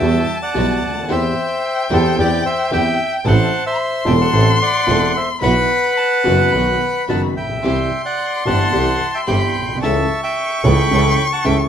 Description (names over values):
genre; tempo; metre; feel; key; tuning
tango; 110 BPM; 4/4; rubato; unclear; A4 = 440 Hz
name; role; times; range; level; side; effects
bandoneon; melody; 0.0-11.6 s; G4 to B5; -19 LUFS; equal; none
dark violin; second line; 0.0-11.7 s; G5 to C#6; -22 LUFS; left 3 dB; none
warm concert grand piano; accompaniment; 0.0-11.7 s; E1 to A4; -21 LUFS; equal; none
warm symphonic string section; stabs; 0.0-11.7 s; G3 to A4; -25 LUFS; right 1 dB; none
clear double bass; bass; 0.0-11.7 s; E1 to E2; -19 LUFS; right 1 dB; none
room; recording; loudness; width
light reverb; minimal, uncompressed stereo recording; -14 LUFS; side -8 dB against mid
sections
0.0-11.7 A section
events
none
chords
0.0 Emadd9; 1.1 C/E; 3.3 Am; 5.4 Bsus4; 6.5 B; 7.6 C; 9.8 A/C#